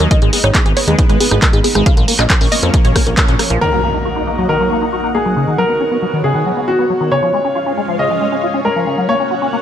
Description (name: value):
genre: uplifting trance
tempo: 137 BPM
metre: 4/4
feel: straight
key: Eb minor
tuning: A4 = 439 Hz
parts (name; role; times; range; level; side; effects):
- wide unison pluck; melody; 0.0-3.6 s; Ab4 to F5; -20 LUFS; right 1 dB; sidechain pumping, tape echo
- lush unison pad; sustained chords; 0.0-9.6 s; F3 to Gb5; -21 LUFS; right 1 dB; chorus, phaser, sidechain pumping
- liquid acid bass; arpeggios; 0.0-9.6 s; Db3 to Gb4; -19 LUFS; left 2 dB; phaser, wide subtle chorus, sidechain pumping, tape echo
- plucky analog bass; bass; 0.0-3.6 s; Ab1 to F2; -16 LUFS; equal; sidechain pumping
- punchy analog drum machine; drums; 0.0-3.6 s; handclaps, hi-hat, rim click; -17 LUFS; right 1 dB; none
- electronic kick drum; drums; 0.1-3.3 s; none; -13 LUFS; equal; none
- clear grand piano; second line; 3.6-9.6 s; F#4 to Eb5; -17 LUFS; left 1 dB; dub echo
- impact; sound effects; 3.6-5.4 s; none; -23 LUFS; equal; none
room: moderate digital room reverb, RT60 1.2 s, digital ambience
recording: none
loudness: -12 LUFS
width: side -10 dB against mid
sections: 0.0-3.6 A section; 3.6-9.6 B section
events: band accent 3.2; impact 3.6-5.4; filter sweep on acid bass 3.6-9.6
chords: 0.1 Abm; 1.9 Bbm; 3.6 Ebm; 5.4 Badd9; 7.1 Db; 8.9 Gb